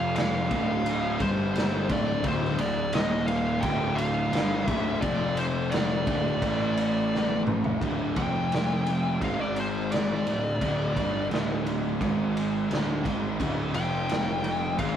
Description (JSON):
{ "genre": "stoner and doom metal", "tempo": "86 BPM", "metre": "4/4", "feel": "straight", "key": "unclear", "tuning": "A4 = 440 Hz", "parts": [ { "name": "fuzz lead guitar", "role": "melody", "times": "0.0-15.0 s", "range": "C5 to G5", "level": "-30 LUFS", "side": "left 2 dB", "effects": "distortion" }, { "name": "biting overdriven guitar", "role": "riff", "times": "0.0-15.0 s", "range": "D2 to A3", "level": "-34 LUFS", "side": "right 1 dB", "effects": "none" }, { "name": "thick fuzz guitar", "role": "riff", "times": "0.0-15.0 s", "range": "D2 to A3", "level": "-33 LUFS", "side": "left 6 dB", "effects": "distortion" }, { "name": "thick fuzz guitar", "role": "riff", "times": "0.0-15.0 s", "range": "D2 to A3", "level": "-32 LUFS", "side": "right 5 dB", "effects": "distortion" }, { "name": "fuzz picked electric bass", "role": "bass", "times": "0.0-15.0 s", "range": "D1 to A1", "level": "-32 LUFS", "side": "equal", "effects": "overdrive" }, { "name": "raw garage drum kit", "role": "drums", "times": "0.2-15.0 s", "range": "kick drum, ride cymbal, snare drum, toms", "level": "-30 LUFS", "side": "equal", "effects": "none" } ], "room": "light reverb", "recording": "rough rehearsal-room recording", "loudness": "-24 LUFS", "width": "side -9 dB against mid", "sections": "0.0-7.8 A section; 7.8-15.0 B section", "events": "drum fill 7.1-7.8; lead electric guitar solo 7.8-15.0", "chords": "0.0 F5; 0.5 Dm; 1.2 G5; 1.9 D5; 2.9 Eb5; 3.6 Dm; 5.0 F5; 6.1 D5; 6.4 A5; 7.8 D5; 8.2 F5; 9.2 G#5; 10.3 D5; 12.0 G#5; 12.7 D5; 13.7 F5", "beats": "0.16 0.86 1.55 | 2.25 2.94 3.64 4.34 | 5.03 5.73 6.42 7.12 | 7.82 8.51 9.21 9.91 | 10.61 11.30 12.00 12.70 | 13.40 14.10 14.80" }